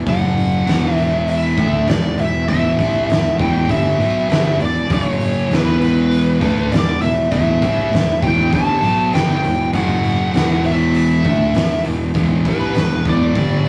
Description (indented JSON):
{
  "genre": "stoner and doom metal",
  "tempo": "99 BPM",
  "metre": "4/4",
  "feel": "straight",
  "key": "E minor",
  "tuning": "A4 = 440 Hz",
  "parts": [
    { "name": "fuzz fingered electric bass", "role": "bass", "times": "0.0-13.7 s", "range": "E1 to D2", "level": "-24 LUFS", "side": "equal", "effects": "overdrive" },
    { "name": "fuzz lead guitar", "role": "melody", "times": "0.1-13.7 s", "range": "B4 to A5", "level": "-23 LUFS", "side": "equal", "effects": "wah, distortion" },
    { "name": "thick fuzz guitar", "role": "riff", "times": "0.1-13.7 s", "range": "E2 to D4", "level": "-22 LUFS", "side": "equal", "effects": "distortion" },
    { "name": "thick fuzz guitar", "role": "riff", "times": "0.1-13.7 s", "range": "E2 to D4", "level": "-26 LUFS", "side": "equal", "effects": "distortion" },
    { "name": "oversized low-tuned drum kit", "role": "drums", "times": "0.1-13.7 s", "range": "hi-hat, kick drum, snare drum", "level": "-22 LUFS", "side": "equal", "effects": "none" }
  ],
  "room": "moderate studio reverb, RT60 0.5 s",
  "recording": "rough rehearsal-room recording, small room ambience",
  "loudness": "-16 LUFS",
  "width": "mono",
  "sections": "0.0-13.7 A section",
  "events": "none",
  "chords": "0.1 F#5; 0.7 Em; 4.9 F#5; 5.5 Em; 9.7 F#5; 10.3 Em",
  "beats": "| 0.07 0.68 1.28 1.88 | 2.49 3.09 3.70 4.30 | 4.91 5.51 6.11 6.72 | 7.32 7.93 8.53 9.14 | 9.74 10.34 10.95 11.55 | 12.16 12.76 13.36"
}